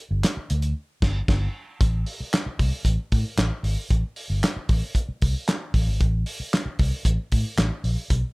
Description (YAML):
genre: funk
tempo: 114 BPM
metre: 4/4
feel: straight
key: unclear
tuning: A4 = 440 Hz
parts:
  - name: vintage muted fingered electric bass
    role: bass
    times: 0.1-8.2 s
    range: G1 to A2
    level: -24 LUFS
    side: equal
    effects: none
  - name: cloth-damped thuddy drum kit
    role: drums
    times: 0.2-8.2 s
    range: crash cymbal, handclaps, hi-hat, kick drum, snare drum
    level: -23 LUFS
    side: equal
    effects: none
room: little or no reverb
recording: none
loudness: -22 LUFS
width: side -27 dB against mid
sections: 0.0-1.8 A section; 1.8-8.3 B section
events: band accent 0.8-1.8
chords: none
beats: 0.23 0.76 1.28 | 1.81 2.33 2.86 3.38 | 3.91 4.43 4.96 5.48 | 6.00 6.53 7.05 7.58 | 8.10